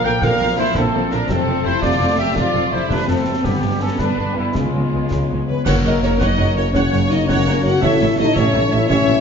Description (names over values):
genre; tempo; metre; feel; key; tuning
cinematic, heroic adventure film score; 111 BPM (dotted quarters); 12/8; straight; unclear; A4 = 443 Hz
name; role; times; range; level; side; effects
rich symphonic violin section; melody; 0.0-9.2 s; G3 to F#5; -25 LUFS; left 2 dB; none
warm symphonic violin section; second line; 0.0-9.2 s; G3 to E5; -25 LUFS; left 3 dB; none
dark symphonic viola section; accompaniment; 0.0-9.1 s; C3 to F#5; -25 LUFS; right 3 dB; none
concert harp; arpeggios; 0.0-9.2 s; F2 to D6; -26 LUFS; left 8 dB; none
warm trumpet section; stabs; 0.0-9.2 s; E4 to G5; -23 LUFS; right 1 dB; none
clear symphonic double bass section; bass; 0.0-9.2 s; F1 to C#2; -25 LUFS; right 4 dB; none
rich studio cello section; bass; 0.0-9.1 s; C#2 to Bb2; -26 LUFS; right 2 dB; none
concert snare drum, concert bass drum and clash cymbals; drums; 0.2-9.1 s; none; -25 LUFS; right 1 dB; none
bright flute section; second line; 5.5-9.2 s; A#4 to F#5; -27 LUFS; right 3 dB; none
dark French horn section; sustained chords; 5.5-9.2 s; A#3 to F#4; -20 LUFS; left 4 dB; none
dark trombone section; sustained chords; 5.7-9.2 s; E3 to A#3; -26 LUFS; right 3 dB; none
warm tuba; bass; 5.7-9.2 s; F#1 to A1; -25 LUFS; right 4 dB; none
clash cymbals and concert bass drum; percussion; 5.7-6.3 s; none; -24 LUFS; equal; none
room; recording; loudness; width
wet recital hall reverb, RT60 1.6 s; nothing above 7.5 kHz; -15 LUFS; side -6 dB against mid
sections
0.0-5.7 A section; 5.7-9.2 B section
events
band accent 5.7-6.0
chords
0.0 Bb; 1.3 F; 3.4 G; 4.6 C#7; 5.7 F#; 7.8 A